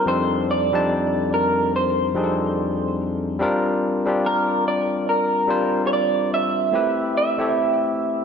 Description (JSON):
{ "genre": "R&B", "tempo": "72 BPM", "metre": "4/4", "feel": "swing 58% on 16ths", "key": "unclear", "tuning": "A4 = 439 Hz", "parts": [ { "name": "electric guitar through a small old amp", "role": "melody", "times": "0.0-8.2 s", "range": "Bb4 to E5", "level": "-21 LUFS", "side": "right 2 dB", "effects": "wide subtle chorus, ping-pong delay" }, { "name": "barky tine electric piano", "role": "accompaniment", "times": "0.0-8.2 s", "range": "F2 to A5", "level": "-22 LUFS", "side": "left 2 dB", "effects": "overdrive" } ], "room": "wet plate reverb, RT60 2.5 s", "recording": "dreamy mix soaked in reverb", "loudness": "-19 LUFS", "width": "side -6 dB against mid", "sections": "0.0-8.2 A section", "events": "none", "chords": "0.1 F13; 3.4 Bb6; 6.7 Am7" }